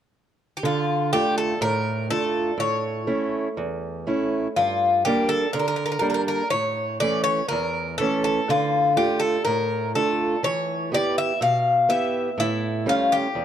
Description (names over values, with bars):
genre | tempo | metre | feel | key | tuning
greek folk | 122 BPM | 4/4 | straight | D harmonic minor | A4 = 440 Hz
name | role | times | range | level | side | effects
Greek bouzouki | melody | 0.6-13.4 s | E4 to F5 | -22 LUFS | left 2 dB | none
fingerpicked acoustic archtop guitar | accompaniment | 0.6-13.4 s | E2 to G4 | -24 LUFS | right 2 dB | none
room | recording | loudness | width
moderate plate reverb, RT60 2.4 s | dark, warm production | -20 LUFS | side -9 dB against mid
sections
0.6-13.4 A section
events
none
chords
0.0 N.C.; 0.6 Dm; 2.6 A; 4.6 Gm; 6.5 A; 8.5 Dm; 10.4 Em; 12.4 A7